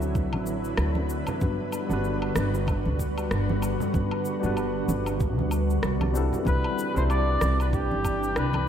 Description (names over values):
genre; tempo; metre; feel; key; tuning
sunset chillout; 95 BPM; 4/4; swing 57% on 16ths; unclear; A4 = 442 Hz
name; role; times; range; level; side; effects
tine electric piano; accompaniment; 0.0-8.7 s; F#3 to D5; -31 LUFS; moving between left 4 dB and right 4 dB; medium stereo tremolo, auto-pan, low-pass filter, analog delay
shimmering ambient pad; sustained chords; 0.0-8.7 s; C3 to D5; -31 LUFS; equal; chorus, built-in reverb, vintage 12-bit sampler grit
upright bass; bass; 0.0-8.7 s; G1 to D2; -27 LUFS; equal; none
electronic shaker, woodblock and rim click; drums; 0.0-8.6 s; none; -35 LUFS; left 1 dB; small room ambience
congas; percussion; 0.1-8.6 s; none; -35 LUFS; right 2 dB; none
electronic kick drum; drums; 0.2-8.2 s; none; -28 LUFS; equal; small room ambience
warm flugelhorn; melody; 6.5-8.7 s; G4 to D5; -28 LUFS; left 1 dB; analog delay
room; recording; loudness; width
moderate plate reverb, RT60 2.7 s; dreamy mix soaked in reverb; -23 LUFS; side -9 dB against mid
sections
0.0-8.7 A section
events
filter sweep on tine electric piano 0.0-8.7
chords
0.0 D9; 1.4 Gmaj7; 6.2 Cmaj9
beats
0.15 0.78 | 1.41 2.04 2.68 3.31 | 3.94 4.57 5.20 5.83 | 6.47 7.10 7.73 8.36